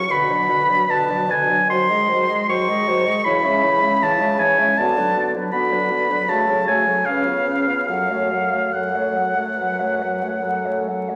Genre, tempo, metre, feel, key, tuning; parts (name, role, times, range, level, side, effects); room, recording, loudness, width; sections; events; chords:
classical, slow romantic movement for wind quintet; 68-82 BPM; 4/4; rubato; F# minor; A4 = 440 Hz
mellow concert flute; melody; 0.0-11.2 s; A4 to F#5; -28 LUFS; equal
clear oboe; second line; 0.0-10.9 s; E#5 to C#6; -21 LUFS; equal
clear French horn; accompaniment; 0.0-11.2 s; D3 to C#4; -30 LUFS; equal
dark clarinet; accompaniment; 0.0-11.1 s; C#4 to B4; -32 LUFS; equal
warm bassoon; bass; 0.1-11.2 s; F#2 to D#3; -29 LUFS; equal
wet recital hall reverb, RT60 1.7 s; vinyl crackle; -19 LUFS; mono
0.0-11.2 A section
0.1 Bm; 1.7 G#7/D#; 3.2 C#m; 4.8 Bm/D; 6.3 F#m/C#; 7.1 C#7; 7.9 F#m